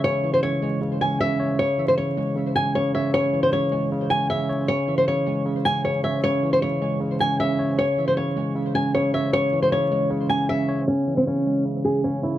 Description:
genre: hip hop.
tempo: 155 BPM.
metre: 4/4.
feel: half-time.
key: C# minor.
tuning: A4 = 440 Hz.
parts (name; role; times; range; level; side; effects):
flamenco guitar; melody; 0.0-12.4 s; B#3 to G#5; -22 LUFS; left 1 dB; low-pass filter, tape echo.
tine electric piano; accompaniment; 0.0-12.4 s; C#3 to C#5; -24 LUFS; right 1 dB; overdrive, medium stereo tremolo, low-pass filter.
room: light reverb.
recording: vinyl crackle, low-pass filter.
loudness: -20 LUFS.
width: side -13 dB against mid.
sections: 0.0-10.9 A section; 10.9-12.4 B section.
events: filter sweep 10.9-12.4.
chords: 0.0 C#m.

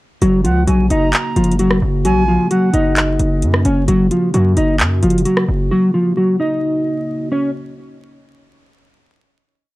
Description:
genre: hip hop, trap.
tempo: 131 BPM.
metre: 4/4.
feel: half-time.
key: F# major.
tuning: A4 = 444 Hz.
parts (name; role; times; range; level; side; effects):
mellow electric guitar; melody; 0.2-7.5 s; E#3 to D#5; -16 LUFS; equal; none.
dark analog pad; sustained chords; 0.2-7.5 s; C#3 to F#4; -24 LUFS; equal; chorus.
distorted 808-style bass; bass; 0.2-5.7 s; F#1 to F#2; -17 LUFS; equal; distortion.
trap drum kit; drums; 0.2-5.5 s; handclaps, hi-hat, rim click; -20 LUFS; equal; none.
reedy silver concert flute; second line; 0.4-2.9 s; F#5 to A#5; -23 LUFS; right 4 dB; tape echo.
room: light reverb.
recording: dark, warm production, vinyl crackle.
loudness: -13 LUFS.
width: side -18 dB against mid.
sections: 0.2-7.5 verse.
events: none.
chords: 0.2 F#.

